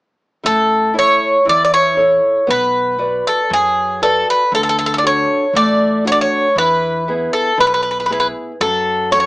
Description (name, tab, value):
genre	greek folk, Greek bouzouki band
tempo	118 BPM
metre	4/4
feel	straight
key	A major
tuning	A4 = 440 Hz
part	nylon-string guitar	accompaniment	0.4-9.3 s	B2 to D5	-20 LUFS	equal	none
part	upright bass	bass	0.4-9.3 s	A1 to F#2	-31 LUFS	equal	none
part	Greek bouzouki	melody	0.5-9.3 s	G#4 to D5	-13 LUFS	equal	none
room	moderate studio reverb, RT60 0.5 s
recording	small speaker sound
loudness	-12 LUFS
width	side -21 dB against mid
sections	0.4-9.3 A section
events	none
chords	0.4 A; 2.5 Bm; 4.5 D; 6.6 E; 8.6 F#m